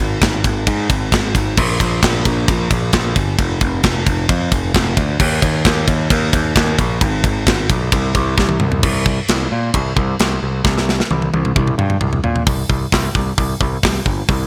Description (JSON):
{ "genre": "heavy metal", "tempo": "132 BPM", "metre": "4/4", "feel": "straight", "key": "C minor", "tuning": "A4 = 439 Hz", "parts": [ { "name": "overdriven picked electric bass", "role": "bass", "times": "0.0-14.4 s", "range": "F1 to Bb2", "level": "-20 LUFS", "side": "equal", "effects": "none" }, { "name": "tight metal drum kit", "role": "drums", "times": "0.2-14.4 s", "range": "crash cymbal, hi-hat, kick drum, ride cymbal, snare drum, toms", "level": "-19 LUFS", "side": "equal", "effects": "none" } ], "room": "light reverb", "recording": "none", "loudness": "-16 LUFS", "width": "mono", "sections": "0.0-8.8 A section; 8.8-12.5 B section; 12.5-14.5 C section", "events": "drum fill 8.4-8.8, 10.6-12.5", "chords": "none" }